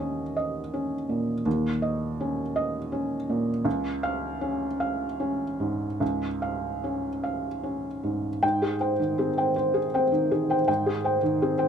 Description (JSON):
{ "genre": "neoclassical minimalist piano", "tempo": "49-56 BPM (dotted quarters)", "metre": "6/8", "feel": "rubato", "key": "Ab major", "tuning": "A4 = 439 Hz", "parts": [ { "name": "felt-muted upright piano", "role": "solo", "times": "0.0-11.7 s", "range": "Db2 to G5", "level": "-25 LUFS", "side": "equal", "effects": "none" } ], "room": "light reverb", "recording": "none", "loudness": "-25 LUFS", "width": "side -7 dB against mid", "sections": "0.0-8.4 A section; 8.4-11.7 A section", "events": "none", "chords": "0.0 Eb5; 3.7 Db; 8.4 Abmaj7" }